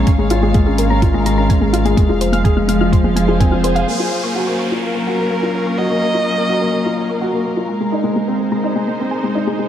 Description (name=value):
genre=piano and strings electronica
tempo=126 BPM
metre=4/4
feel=straight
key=unclear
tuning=A4 = 439 Hz
part: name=dark symphonic string section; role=sustained chords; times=0.0-9.7 s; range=F3 to F5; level=-22 LUFS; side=right 1 dB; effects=sidechain pumping
part: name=felt-muted upright piano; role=riff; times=0.0-9.7 s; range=Ab3 to F5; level=-18 LUFS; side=left 2 dB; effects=digital delay
part: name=warm sub bass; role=bass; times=0.0-3.9 s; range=F1 to Ab1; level=-19 LUFS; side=equal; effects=tube saturation, sidechain pumping
part: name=soft round pluck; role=arpeggios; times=0.1-9.6 s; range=Ab4 to F6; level=-26 LUFS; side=left 2 dB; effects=chorus, sidechain pumping, digital delay
part: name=electronic hi-hat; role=drums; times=0.1-3.9 s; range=none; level=-28 LUFS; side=left 1 dB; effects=none
part: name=electronic kick drum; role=drums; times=0.1-3.5 s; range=none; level=-14 LUFS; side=equal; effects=none
part: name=downlifter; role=sound effects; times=3.9-7.7 s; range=none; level=-29 LUFS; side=equal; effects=none
part: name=warm violin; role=melody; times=4.8-7.5 s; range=Bb4 to Eb5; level=-20 LUFS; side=right 1 dB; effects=digital delay
room=moderate echo chamber reverb, RT60 1.2 s, small room ambience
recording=dark, warm production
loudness=-14 LUFS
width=side -10 dB against mid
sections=0.0-3.9 A section; 3.9-9.7 B section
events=filter sweep on felt piano 0.0-3.9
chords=0.1 Db6/Ab; 2.0 Fm; 3.9 Gbmaj7; 7.7 Abadd9